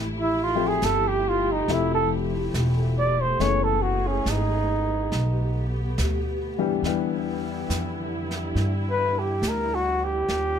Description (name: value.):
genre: jazz ballad.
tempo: 70 BPM.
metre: 4/4.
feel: swing 69% on 8ths.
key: unclear.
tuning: A4 = 439 Hz.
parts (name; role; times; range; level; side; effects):
dark symphonic string section; sustained chords; 0.0-10.6 s; B2 to G#4; -31 LUFS; equal; none.
upright bass; bass; 0.0-10.6 s; E1 to G2; -27 LUFS; equal; none.
warm flugelhorn; melody; 0.2-10.6 s; C#4 to D5; -24 LUFS; right 2 dB; none.
warm upright piano; accompaniment; 0.6-10.3 s; E3 to G#4; -29 LUFS; left 10 dB; none.
jazz brush drum kit; drums; 0.8-10.6 s; brushed snare drum, hi-hat, snare drum; -34 LUFS; right 2 dB; none.
room: little or no reverb.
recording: close, detailed microphones.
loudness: -22 LUFS.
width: side -8 dB against mid.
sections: 0.0-10.6 A section.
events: flugelhorn solo 0.0-10.6.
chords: 0.0 Fmaj9; 3.4 F#m11; 5.1 G69/B; 6.8 Em7.